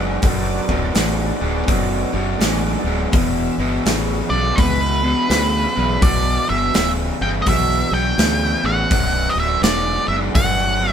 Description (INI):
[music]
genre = blues rock power trio and southern rock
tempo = 83 BPM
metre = 4/4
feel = swing 64% on 8ths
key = B minor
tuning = A4 = 442 Hz
[part]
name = overdriven tonewheel organ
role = sustained chords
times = 0.0-10.9 s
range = B3 to E5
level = -30 LUFS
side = right 2 dB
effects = slow rotary speaker, chorus vibrato
[part]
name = raw garage guitar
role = riff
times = 0.0-10.9 s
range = B1 to C#3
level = -21 LUFS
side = equal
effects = overdrive
[part]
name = modern bright fingered electric bass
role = bass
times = 0.0-10.9 s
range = B0 to D2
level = -22 LUFS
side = equal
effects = none
[part]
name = big rock drum kit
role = drums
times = 0.2-10.6 s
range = hi-hat, kick drum, snare drum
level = -20 LUFS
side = equal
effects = none
[part]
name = octave-fuzz lead guitar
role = melody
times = 4.3-10.9 s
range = B4 to G5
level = -20 LUFS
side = right 1 dB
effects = distortion
[sound]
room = light reverb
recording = band playing live in one room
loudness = -16 LUFS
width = side -8 dB against mid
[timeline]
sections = 0.0-10.9 A section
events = none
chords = 0.0 Bm; 3.1 Em; 8.9 Bm